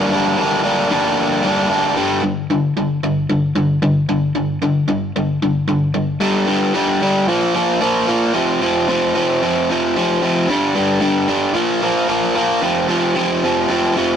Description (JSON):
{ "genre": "rock", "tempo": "112 BPM", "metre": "4/4", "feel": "straight", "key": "G minor", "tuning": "A4 = 436 Hz", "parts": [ { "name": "biting overdriven guitar", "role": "solo", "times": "0.0-14.2 s", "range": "F2 to D4", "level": "-15 LUFS", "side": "equal", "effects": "none" } ], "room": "moderate stone room reverb, RT60 1.0 s", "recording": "rough rehearsal-room recording, tube saturation", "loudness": "-15 LUFS", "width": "side -8 dB against mid", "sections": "0.0-2.0 A section; 2.0-6.2 B section; 6.2-14.2 C section", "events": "none", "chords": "0.0 Gm; 2.0 G5; 7.3 Bb5; 8.3 F5; 10.5 G5; 11.6 Bb5; 12.6 F5", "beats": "0.38 0.90 1.43 | 1.96 2.48 3.01 3.54 | 4.07 4.60 5.13 5.67 | 6.20 6.73 7.27 7.80 | 8.34 8.87 9.41 9.95 | 10.48 11.02 11.55 12.09 | 12.62 13.15 13.69" }